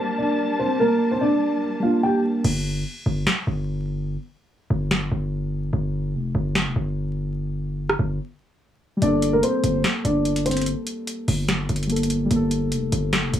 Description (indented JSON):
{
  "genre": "hip hop, trap",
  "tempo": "146 BPM",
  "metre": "4/4",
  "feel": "half-time",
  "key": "G minor",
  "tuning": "A4 = 440 Hz",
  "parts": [
    { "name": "muted felt-like synth keys", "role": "accompaniment", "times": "0.0-2.5, 9.0-13.4 s", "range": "G3 to Bb4", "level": "-25 LUFS", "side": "equal", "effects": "chorus, low-pass filter, plate reverb" },
    { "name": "rich symphonic string section", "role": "sustained chords", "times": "0.0-2.4 s", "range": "G3 to A5", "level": "-29 LUFS", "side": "left 2 dB", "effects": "low-pass filter, plate reverb" },
    { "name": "dark concert grand piano", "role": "melody", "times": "0.2-2.2, 9.0-10.6 s", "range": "Bb3 to G5", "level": "-21 LUFS", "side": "equal", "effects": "low-pass filter, slapback echo, plate reverb" },
    { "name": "distorted 808-style bass", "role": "bass", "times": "2.4-13.4 s", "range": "F1 to G1", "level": "-24 LUFS", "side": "equal", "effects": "distortion" },
    { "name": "booming analog drum machine", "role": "drums", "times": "2.4-13.4 s", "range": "crash cymbal, hi-hat, rim click, snare drum", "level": "-25 LUFS", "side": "equal", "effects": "none" }
  ],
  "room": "light reverb",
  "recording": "vinyl crackle",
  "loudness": "-20 LUFS",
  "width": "side -10 dB against mid",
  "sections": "0.0-2.4 A section; 2.4-13.4 B section",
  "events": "filter sweep 0.0-2.4; break 2.4-9.0",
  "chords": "0.0 Gmadd9; 2.4 N.C.; 9.0 Gmadd9",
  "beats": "0.39 | 0.80 1.21 1.62 2.03 | 2.44 2.85 3.27 3.68 | 4.09 4.50 4.91 5.32 | 5.73 6.14 6.55 6.96 | 7.38 7.79 8.20 8.61 | 9.02 9.43 9.84 10.25 | 10.66 11.07 11.48 11.90 | 12.31 12.72 13.13"
}